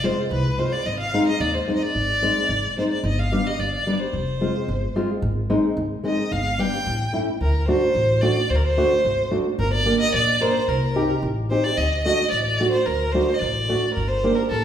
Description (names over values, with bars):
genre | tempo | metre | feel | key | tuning
klezmer | 110 BPM | 2/4 | straight | D phrygian dominant from 7.4 s | A4 = 440 Hz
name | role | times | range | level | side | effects
rich violin | melody | 0.0-14.6 s | A4 to G5 | -23 LUFS | equal | none
nylon-string guitar | accompaniment | 0.0-14.4 s | G3 to Bb4 | -24 LUFS | equal | none
upright bass | bass | 0.0-14.6 s | F1 to Eb2 | -25 LUFS | equal | none
room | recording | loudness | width
wet recital hall reverb, RT60 1.6 s | recorded in a church or concert hall | -19 LUFS | side -9 dB against mid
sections
0.0-7.4 A section; 7.4-14.6 B section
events
none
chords
0.0 Fm; 0.9 Ab; 3.0 G; 4.1 Fm; 5.2 Ab; 6.3 G; 6.9 A7; 7.4 D; 9.6 Gm; 10.7 Cm; 11.8 D; 14.0 Gm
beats
0.31 | 0.86 1.41 | 1.95 2.50 | 3.04 3.59 | 4.13 4.68 | 5.23 5.77 | 6.32 6.87 | 7.41 7.96 | 8.50 9.05 | 9.59 10.14 | 10.68 11.23 | 11.77 12.32 | 12.87 13.41 | 13.96 14.51